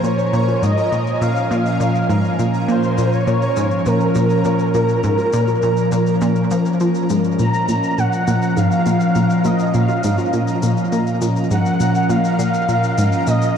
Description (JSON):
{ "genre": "ambient, sequencer-driven space music", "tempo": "102 BPM", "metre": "4/4", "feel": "straight", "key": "Bb minor", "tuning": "A4 = 440 Hz", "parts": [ { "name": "breathy flute-like synth lead", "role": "melody", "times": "0.0-13.6 s", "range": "Bb4 to Bb5", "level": "-21 LUFS", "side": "equal", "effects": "ensemble chorus, tape echo" }, { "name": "evolving wavetable pad", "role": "sustained chords", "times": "0.0-13.6 s", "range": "Bb2 to Ab5", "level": "-20 LUFS", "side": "equal", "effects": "chorus, built-in reverb" }, { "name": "analog pluck", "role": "riff", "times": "0.0-13.5 s", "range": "Ab2 to F3", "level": "-19 LUFS", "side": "equal", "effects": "chorus, vintage 12-bit sampler grit, tape echo" }, { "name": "congas and shaker", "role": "percussion", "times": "0.0-13.5 s", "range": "none", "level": "-34 LUFS", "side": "left 1 dB", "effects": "overdrive, tape echo" }, { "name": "pulsing gated texture", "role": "texture", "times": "0.0-13.6 s", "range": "Bb5", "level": "-32 LUFS", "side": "right 1 dB", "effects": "chorus, built-in reverb" } ], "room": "wet huge ambient reverb, RT60 8.4 s", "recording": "dark, warm production", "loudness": "-15 LUFS", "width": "side -8 dB against mid", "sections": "0.0-13.6 A section", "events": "fade-in on drum 0.0-13.6", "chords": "0.0 Bbm" }